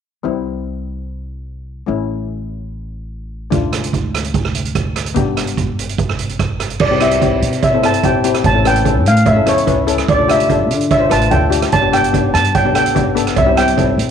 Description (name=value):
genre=calypso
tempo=146 BPM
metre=4/4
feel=straight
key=C major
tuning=A4 = 436 Hz
part: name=steel pan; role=accompaniment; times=0.2-14.1 s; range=G3 to C5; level=-19 LUFS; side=left 11 dB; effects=none
part: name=upright bass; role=bass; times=0.2-14.1 s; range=G1 to D3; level=-20 LUFS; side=equal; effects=none
part: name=street-band drum kit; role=drums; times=3.5-14.1 s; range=crash cymbal, hi-hat, kick drum, rim click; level=-18 LUFS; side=right 5 dB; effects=none
part: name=steel pan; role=melody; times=6.8-14.0 s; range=C#5 to A5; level=-15 LUFS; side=right 1 dB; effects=none
part: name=cowbell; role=percussion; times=6.8-13.9 s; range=none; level=-25 LUFS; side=right 9 dB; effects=none
room=light reverb, studio ambience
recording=1960s-style stereo with parts hard left and right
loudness=-13 LUFS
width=side -8 dB against mid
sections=0.2-6.8 A section; 6.8-14.1 B section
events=none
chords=0.2 C; 1.9 A; 3.5 Dm; 5.2 G; 6.8 C; 8.4 A7; 10.1 Dm; 11.7 Gadd9; 13.4 C